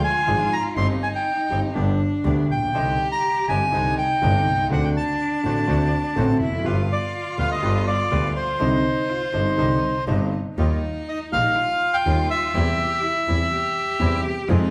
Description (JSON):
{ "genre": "tango", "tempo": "123 BPM", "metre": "4/4", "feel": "rubato", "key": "C minor", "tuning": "A4 = 442 Hz", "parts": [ { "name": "bandoneon", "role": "melody", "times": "0.0-14.2 s", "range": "C5 to C6", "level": "-25 LUFS", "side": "equal", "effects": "none" }, { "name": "clear cello", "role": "second line", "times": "0.0-14.7 s", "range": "C4 to G4", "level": "-30 LUFS", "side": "equal", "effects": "none" }, { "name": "clear concert grand piano", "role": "accompaniment", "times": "0.3-14.7 s", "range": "G1 to Ab4", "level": "-29 LUFS", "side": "equal", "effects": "none" }, { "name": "bandoneon", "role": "stabs", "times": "0.3-14.7 s", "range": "B3 to C5", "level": "-37 LUFS", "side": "equal", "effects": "none" }, { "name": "rich double bass", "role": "bass", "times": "0.3-14.7 s", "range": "F1 to F2", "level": "-27 LUFS", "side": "equal", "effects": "none" } ], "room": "wet large studio reverb, RT60 1.3 s", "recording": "band playing live in one room", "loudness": "-22 LUFS", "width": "mono", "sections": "0.0-10.6 A section; 10.6-14.7 B section", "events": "none", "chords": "0.0 Ddim; 0.8 Cm/G; 1.8 G; 2.7 Cmadd9; 4.7 D7; 6.7 G7; 8.6 Cmadd9; 10.6 Ebadd9; 12.6 C/E", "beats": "0.28 | 0.77 1.26 1.75 2.25 | 2.75 3.24 3.74 4.23 | 4.72 5.21 5.69 6.17 | 6.66 7.14 7.62 8.11 | 8.60 9.09 9.58 10.08 | 10.59 11.08 11.58 12.06 | 12.55 13.04 13.52 14.01 | 14.49" }